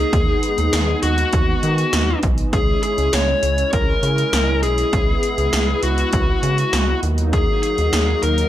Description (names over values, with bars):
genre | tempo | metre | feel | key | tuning
synth-pop | 100 BPM | 4/4 | straight | C# dorian | A4 = 440 Hz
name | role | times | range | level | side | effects
dark smooth lead guitar | melody | 0.0-8.5 s | F#4 to C#5 | -20 LUFS | left 2 dB | overdrive, tape echo
warm analog pad | sustained chords | 0.0-8.5 s | F#3 to E4 | -25 LUFS | right 2 dB | lush chorus
rubbery square bass | bass | 0.0-8.4 s | B1 to D#3 | -21 LUFS | equal | none
80s electronic pad drums | drums | 0.1-8.5 s | hi-hat, kick drum, snare drum | -21 LUFS | equal | none
room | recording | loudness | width
light reverb, digital ambience | none | -16 LUFS | side -12 dB against mid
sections
0.0-8.5 A section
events
none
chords
0.1 G#m/D#; 2.5 C#m; 7.0 D#m